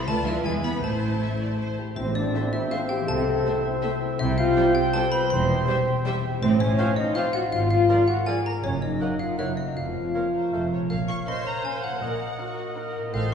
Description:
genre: cinematic, playful, whimsical film cue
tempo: 162 BPM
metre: 3/4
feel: straight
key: A minor, Bb minor from 6.4 s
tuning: A4 = 436 Hz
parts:
  - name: warm studio violin section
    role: melody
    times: 0.0-13.3 s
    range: G4 to Db6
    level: -38 LUFS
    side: left 2 dB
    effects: none
  - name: xylophone with wooden mallets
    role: melody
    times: 0.0-13.3 s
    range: C5 to Db6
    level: -32 LUFS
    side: equal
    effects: none
  - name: rich studio viola section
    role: accompaniment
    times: 0.0-13.3 s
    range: F3 to C5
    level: -35 LUFS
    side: right 1 dB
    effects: none
  - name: concert harp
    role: arpeggios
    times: 0.0-13.3 s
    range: F2 to Eb6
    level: -31 LUFS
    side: left 5 dB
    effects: none
  - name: warm studio double bass section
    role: bass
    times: 0.0-13.3 s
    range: E1 to E2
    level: -30 LUFS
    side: right 1 dB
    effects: none
  - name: rich studio violin section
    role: second line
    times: 0.1-13.0 s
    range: Db4 to B5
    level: -40 LUFS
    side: left 2 dB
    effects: none
  - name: rich studio cello section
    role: bass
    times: 0.1-13.3 s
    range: E2 to B3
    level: -30 LUFS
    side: right 3 dB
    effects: none
  - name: concert flute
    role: second line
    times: 2.0-13.3 s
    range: A4 to C6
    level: -34 LUFS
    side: right 1 dB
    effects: none
  - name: mellow cor anglais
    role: second line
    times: 2.0-13.3 s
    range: Eb5 to G5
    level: -36 LUFS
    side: right 5 dB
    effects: none
  - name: warm clarinet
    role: second line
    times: 2.0-13.3 s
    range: F4 to Eb5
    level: -35 LUFS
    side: left 2 dB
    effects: none
  - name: warm bassoon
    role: accompaniment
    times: 2.0-13.3 s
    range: A3 to C4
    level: -34 LUFS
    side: right 3 dB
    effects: none
  - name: mellow French horn section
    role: sustained chords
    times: 2.0-12.9 s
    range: Bb3 to C5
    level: -26 LUFS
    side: left 2 dB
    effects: none
  - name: tam-tam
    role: percussion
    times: 2.0-3.4 s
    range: none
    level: -39 LUFS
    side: equal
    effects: none
room: wet scoring stage reverb, RT60 1.9 s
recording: heard from further back in the room, nothing above 10.7 kHz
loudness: -22 LUFS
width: side -7 dB against mid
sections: 0.0-2.0 A section; 2.0-10.9 B section; 10.9-13.3 C section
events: band accent 2.0-2.3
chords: 0.1 Bm7b5/D; 0.4 E; 0.8 Am; 3.1 Am/C; 4.2 C; 5.3 C/E; 6.4 F/A; 7.5 Bb7/Ab; 8.6 Ebm/Gb; 9.4 Gb7; 9.8 Bbm/F; 10.5 F; 10.9 Bbm; 12.0 Ebm/Bb

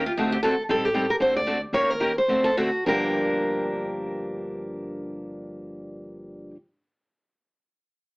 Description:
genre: acoustic string swing (jazz manouche)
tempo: 199-235 BPM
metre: 4/4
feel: swing 56% on 8ths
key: G minor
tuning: A4 = 440 Hz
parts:
  - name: picked steel-string acoustic guitar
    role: melody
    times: 0.0-6.5 s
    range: G4 to D5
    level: -24 LUFS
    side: equal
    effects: none
  - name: picked steel-string acoustic guitar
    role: accompaniment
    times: 0.0-6.6 s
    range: G2 to Bb4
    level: -27 LUFS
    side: equal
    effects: none
  - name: upright bass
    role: bass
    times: 0.0-6.5 s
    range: G1 to Eb2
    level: -38 LUFS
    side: equal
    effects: none
  - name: picked steel-string acoustic guitar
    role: second line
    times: 0.1-6.5 s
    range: Eb4 to Bb4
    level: -30 LUFS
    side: equal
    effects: none
room: moderate studio ambience, RT60 0.5 s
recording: AM radio sound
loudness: -22 LUFS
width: side -34 dB against mid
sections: 0.0-2.9 A section; 2.9-5.3 B section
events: slowing down 0.7-2.9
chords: 0.2 D7; 0.7 Am7b5; 1.2 D7; 1.7 Eb7; 2.3 D7; 2.9 Gm7

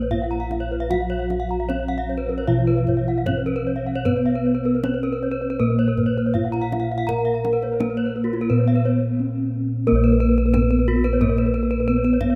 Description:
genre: Balinese gamelan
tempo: 76-90 BPM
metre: 4/4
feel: straight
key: Bb pelog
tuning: A4 = 440 Hz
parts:
  - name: gamelan-type bronze metallophone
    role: melody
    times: 0.0-12.4 s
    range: Bb3 to Bb4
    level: -25 LUFS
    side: equal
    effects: none
  - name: gamelan-type bronze metallophone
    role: accompaniment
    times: 0.0-12.4 s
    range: F3-45c to Cb4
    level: -34 LUFS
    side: equal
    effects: none
  - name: gamelan-type bronze metallophone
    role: arpeggios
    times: 0.0-12.4 s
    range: F4-45c to Bb5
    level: -34 LUFS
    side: equal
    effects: none
  - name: gamelan-type bossed gongs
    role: bass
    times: 0.0-12.4 s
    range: Bb1 to Cb5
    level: -26 LUFS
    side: equal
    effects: none
  - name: gamelan-type bronze metallophone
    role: arpeggios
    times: 0.1-12.3 s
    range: Gb4-40c to Bb5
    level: -30 LUFS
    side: equal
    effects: none
  - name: kendang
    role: percussion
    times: 0.1-12.4 s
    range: none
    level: -32 LUFS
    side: equal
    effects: none
room: light reverb, studio ambience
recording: rough home demo mix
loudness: -21 LUFS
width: mono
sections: 0.0-9.9 A section; 9.9-12.4 B section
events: break 8.8-9.9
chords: none

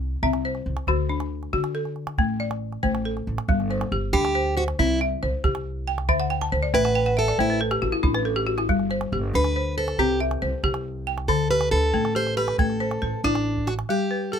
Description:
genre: west african traditional, West African string and xylophone music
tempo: 92 BPM (dotted quarters)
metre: 12/8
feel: straight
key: G major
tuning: A4 = 440 Hz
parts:
  - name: upright bass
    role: bass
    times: 0.0-13.8 s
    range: G1 to D3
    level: -28 LUFS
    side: right 1 dB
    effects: none
  - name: balafon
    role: arpeggios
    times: 0.2-14.4 s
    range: D3 to A5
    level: -25 LUFS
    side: left 3 dB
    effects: none
  - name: calabash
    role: percussion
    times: 0.2-13.9 s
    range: none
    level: -27 LUFS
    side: right 3 dB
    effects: none
  - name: picked plugged-in steel-string acoustic guitar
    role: melody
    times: 4.1-14.4 s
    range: D4 to C5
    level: -24 LUFS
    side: right 2 dB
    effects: none
room: little or no reverb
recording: close, detailed microphones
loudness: -21 LUFS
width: side -8 dB against mid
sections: 0.0-3.5 A section; 3.5-13.9 B section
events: steel-string acoustic guitar solo 3.5-13.9; balafon fill 6.1-8.7; drum fill 13.6-13.9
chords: 0.0 C; 0.9 D; 2.2 Am; 3.5 G5; 4.8 C; 6.1 D5; 7.4 A5; 8.7 G; 10.0 C; 11.3 D5; 12.6 Am; 13.9 G

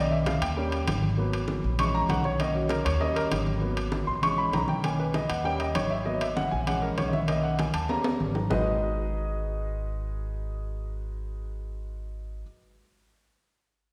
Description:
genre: Afro-Cuban jazz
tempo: 196 BPM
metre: 4/4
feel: straight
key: G# minor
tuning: A4 = 440 Hz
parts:
  - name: warm concert grand piano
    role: accompaniment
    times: 0.0-12.4 s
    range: D#3 to C#6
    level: -30 LUFS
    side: equal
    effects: none
  - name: upright bass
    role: bass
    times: 0.0-12.4 s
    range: G#1 to D#2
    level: -34 LUFS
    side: equal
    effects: none
  - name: congas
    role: percussion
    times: 0.1-8.6 s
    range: none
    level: -35 LUFS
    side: equal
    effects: none
  - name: timbales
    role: percussion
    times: 0.3-8.6 s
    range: none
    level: -36 LUFS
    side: equal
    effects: none
room: wet scoring stage reverb, RT60 1.9 s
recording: recorded in a church or concert hall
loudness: -28 LUFS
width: mono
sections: 0.0-8.5 A section; 8.5-11.0 B section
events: grand piano solo 0.0-8.5; drum fill 7.9-8.5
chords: 0.0 Bmaj7; 0.6 D#7; 1.2 G#m7; 1.8 A#m7b5; 2.4 Bmaj7; 3.0 D#7; 3.6 G#m7; 4.2 A#m7b5; 4.8 Bmaj7; 5.4 D#7; 6.1 G#m7; 6.7 A#m7b5; 7.3 Bmaj7; 7.9 D#7; 8.5 G#m7

